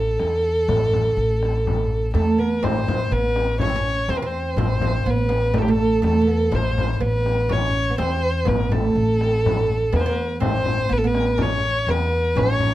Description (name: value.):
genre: Arabic maqam ensemble.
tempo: 123 BPM.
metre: 4/4.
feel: straight.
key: A maqam saba.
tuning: A4 = 443 Hz.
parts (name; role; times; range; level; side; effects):
warm violin; melody; 0.0-12.7 s; G4 to C#5; -22 LUFS; equal; none.
upright bass; bass; 0.0-12.7 s; A1 to E2; -23 LUFS; equal; none.
frame drum; percussion; 0.2-12.7 s; none; -27 LUFS; left 3 dB; none.
oud; second line; 2.1-12.7 s; A3 to C#4; -25 LUFS; right 3 dB; none.
room: little or no reverb.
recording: close, detailed microphones.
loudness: -18 LUFS.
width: side -14 dB against mid.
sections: 0.0-2.6 A section; 2.6-12.7 A section.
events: none.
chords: none.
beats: 0.20 | 0.69 1.18 1.66 2.15 | 2.63 3.12 3.61 4.09 | 4.58 5.07 5.55 6.04 | 6.52 7.01 7.49 7.98 | 8.47 8.95 9.44 9.93 | 10.41 10.90 11.38 11.87 | 12.36.